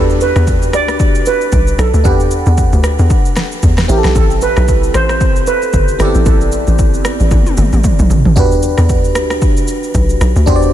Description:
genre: amapiano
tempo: 114 BPM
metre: 4/4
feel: swing 58% on 16ths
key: E minor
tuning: A4 = 440 Hz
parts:
  - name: steel pan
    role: melody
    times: 0.0-7.3 s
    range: G4 to D5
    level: -18 LUFS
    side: right 4 dB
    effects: tape echo
  - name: FM electric piano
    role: accompaniment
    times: 0.0-10.7 s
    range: B3 to F#5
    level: -18 LUFS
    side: equal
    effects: chorus, phaser
  - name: tight log drum bass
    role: bass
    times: 0.0-10.7 s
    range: G1 to E2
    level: -13 LUFS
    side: equal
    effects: none
  - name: deep house drum kit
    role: drums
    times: 0.1-10.7 s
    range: kick drum, rim click, shaker, snare drum, toms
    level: -14 LUFS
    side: equal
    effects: overdrive
room: light reverb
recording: none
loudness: -10 LUFS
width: side -12 dB against mid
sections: 0.0-10.7 A section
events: drum fill 7.3-8.4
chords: 0.0 Em7; 3.9 Am7; 8.4 Em7

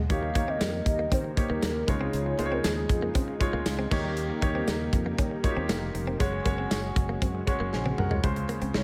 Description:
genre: 1980s-style pop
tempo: 118 BPM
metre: 4/4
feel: straight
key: unclear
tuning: A4 = 439 Hz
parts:
  - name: clear baby grand piano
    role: accompaniment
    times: 0.0-8.8 s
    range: Db3 to Ab5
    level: -34 LUFS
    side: equal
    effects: none
  - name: ensemble organ-string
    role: sustained chords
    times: 0.0-8.8 s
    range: Db3 to Gb4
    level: -42 LUFS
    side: equal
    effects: none
  - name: direct-recorded clean electric guitar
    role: riff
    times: 0.0-8.8 s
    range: G3 to Db4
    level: -39 LUFS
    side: equal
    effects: subtle chorus
  - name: hollow clarinet-like synth lead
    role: melody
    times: 0.1-3.9, 8.8 s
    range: Ab4 to F5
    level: -36 LUFS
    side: equal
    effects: chorus
  - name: mellow synth brass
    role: stabs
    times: 0.1-8.2 s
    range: Eb4 to Db5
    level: -41 LUFS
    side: equal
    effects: chorus
  - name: sustaining fretless electric bass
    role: bass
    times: 0.1-8.8 s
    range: F1 to Eb3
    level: -36 LUFS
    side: equal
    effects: subtle chorus
  - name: modern studio drum kit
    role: drums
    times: 0.1-8.8 s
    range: crash cymbal, hi-hat, kick drum, snare drum, tambourine, toms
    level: -31 LUFS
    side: equal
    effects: gated reverb
room: light reverb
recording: none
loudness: -28 LUFS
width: mono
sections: 0.1-8.2 A section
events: grand piano fill 7.5-8.2; drum fill 7.7-8.2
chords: 0.1 Eb7; 1.9 Dbadd9; 3.9 Eb7; 6.2 Gbsus2; 8.2 Dbmaj7

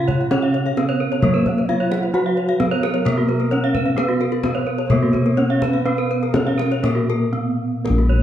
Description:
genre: Balinese gamelan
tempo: 117-131 BPM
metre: 4/4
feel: straight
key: Bb pelog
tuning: A4 = 441 Hz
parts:
  - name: gamelan-type bronze metallophone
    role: melody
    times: 0.0-8.2 s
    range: Bb3 to Gb4-20c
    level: -22 LUFS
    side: equal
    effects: none
  - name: mellow bansuri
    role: second line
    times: 0.0-7.6 s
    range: F4-28c to Gb5-21c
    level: -29 LUFS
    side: right 4 dB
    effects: none
  - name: gamelan-type bronze metallophone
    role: accompaniment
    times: 0.0-7.8 s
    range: Db3-30c to Cb4+20c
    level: -29 LUFS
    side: right 2 dB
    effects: none
  - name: gamelan-type bronze metallophone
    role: arpeggios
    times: 0.0-8.2 s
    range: Gb4-20c to Gb5-20c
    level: -27 LUFS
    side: right 4 dB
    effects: none
  - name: gamelan-type bossed gongs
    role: bass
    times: 0.0-8.2 s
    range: Bb1 to Cb5+20c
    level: -21 LUFS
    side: equal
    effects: none
  - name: kendang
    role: percussion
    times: 0.1-8.0 s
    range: none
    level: -26 LUFS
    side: left 3 dB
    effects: none
  - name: gamelan-type bronze metallophone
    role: arpeggios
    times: 0.2-8.1 s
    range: Gb4-20c to Gb5-20c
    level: -26 LUFS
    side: left 6 dB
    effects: none
room: moderate recital hall reverb, RT60 1.4 s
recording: dark, warm production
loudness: -17 LUFS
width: side -11 dB against mid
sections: 0.0-7.8 A section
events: break 7.1-7.8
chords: none

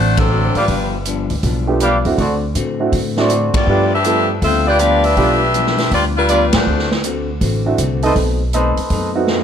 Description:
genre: jazz, big band swing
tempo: 161 BPM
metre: 4/4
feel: swing 65% on 8ths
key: unclear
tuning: A4 = 436 Hz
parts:
  - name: clear saxophone section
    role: melody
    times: 0.0-0.9, 3.6-6.9 s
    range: F#3 to G5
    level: -17 LUFS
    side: left 2 dB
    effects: plate reverb
  - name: vintage hollow-body jazz guitar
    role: accompaniment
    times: 0.0-9.4 s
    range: G2 to F#4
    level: -24 LUFS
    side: left 6 dB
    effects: none
  - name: upright bass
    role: bass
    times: 0.0-9.4 s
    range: G1 to A2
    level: -19 LUFS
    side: equal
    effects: none
  - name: swinging big-band drum kit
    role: drums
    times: 0.2-9.4 s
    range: hi-hat, kick drum, ride cymbal, snare drum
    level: -22 LUFS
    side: right 1 dB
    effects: none
  - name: dark trumpet section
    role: stabs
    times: 0.6-9.1 s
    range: F4 to F5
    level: -18 LUFS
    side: right 1 dB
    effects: none
  - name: warm baby grand piano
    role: accompaniment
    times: 1.7-5.4, 7.7-9.4 s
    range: A3 to A4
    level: -19 LUFS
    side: right 4 dB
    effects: none
room: moderate large studio reverb, RT60 1.0 s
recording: none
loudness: -13 LUFS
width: side -8 dB against mid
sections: 0.0-9.4 A section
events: band accent 0.1, 3.5, 6.5; drum fill 9.3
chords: 0.0 D7; 0.7 G7; 2.2 D7; 3.7 G7; 6.7 D7; 8.2 B7b9

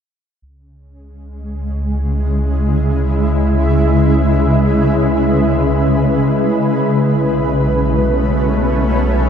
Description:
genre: ambient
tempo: free time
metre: none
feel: none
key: C# minor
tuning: A4 = 441 Hz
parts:
  - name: shimmering ambient pad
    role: sustained chords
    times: 1.5-9.3 s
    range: B2 to B4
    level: -14 LUFS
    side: equal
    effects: chorus, built-in reverb, shimmer reverb
  - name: round analog bass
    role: bass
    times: 0.4-9.3 s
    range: B1 to C#2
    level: -18 LUFS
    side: equal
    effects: none
room: wet cathedral reverb, RT60 5.4 s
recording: none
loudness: -12 LUFS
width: side -8 dB against mid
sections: 0.4-9.3 A section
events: filter sweep on ambient pad 0.4-9.3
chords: 0.4 C#m7; 6.7 B7

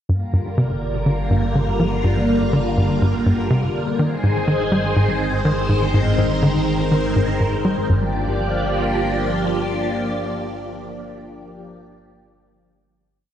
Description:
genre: ambient, sequencer-driven space music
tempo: 123 BPM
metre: 4/4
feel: straight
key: G phrygian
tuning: A4 = 440 Hz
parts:
  - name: phased string machine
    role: sustained chords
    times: 0.1-11.7 s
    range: D3 to D5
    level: -21 LUFS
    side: equal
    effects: ensemble chorus, phaser
  - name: tight sequencer bass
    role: riff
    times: 0.1-8.1 s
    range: G2 to G3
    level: -19 LUFS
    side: equal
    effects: tape echo
  - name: analog drone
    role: bass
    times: 0.1-9.3 s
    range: G1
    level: -27 LUFS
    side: equal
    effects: chorus
room: wet concert hall reverb, RT60 2.0 s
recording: none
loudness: -17 LUFS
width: side -10 dB against mid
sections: 0.1-7.9 A section; 7.9-11.8 final chord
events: none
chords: 0.1 Gm7; 4.0 Ab/G; 7.9 Gm7

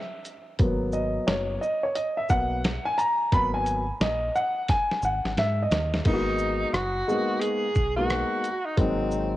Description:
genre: hip hop, jazz-hop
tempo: 88 BPM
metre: 4/4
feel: swing 63% on 16ths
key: G# minor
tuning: A4 = 440 Hz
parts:
  - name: dark upright piano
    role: accompaniment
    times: 0.0-9.4 s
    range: F#3 to B5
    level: -26 LUFS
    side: left 1 dB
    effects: cassette tape
  - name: dusty soul sampler-style drum kit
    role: drums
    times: 0.3-9.3 s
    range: crash cymbal, hi-hat, kick drum, rim click, shaker, snare drum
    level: -27 LUFS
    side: equal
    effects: none
  - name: deep dub fingered electric bass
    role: bass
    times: 0.6-9.4 s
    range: F#1 to G#2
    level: -31 LUFS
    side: equal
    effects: transformer saturation
  - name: warm tenor saxophone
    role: melody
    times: 6.1-9.4 s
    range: B#3 to G#4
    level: -28 LUFS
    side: right 1 dB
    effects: cassette tape, analog delay
room: moderate spring reverb, RT60 2.8 s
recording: home recording on cassette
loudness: -23 LUFS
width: side -15 dB against mid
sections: 0.0-6.0 A section; 6.0-9.4 B section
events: upright piano solo 0.0-6.0; drum fill 4.7-6.0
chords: 0.0 N.C.; 0.6 G#m7; 8.8 G#7

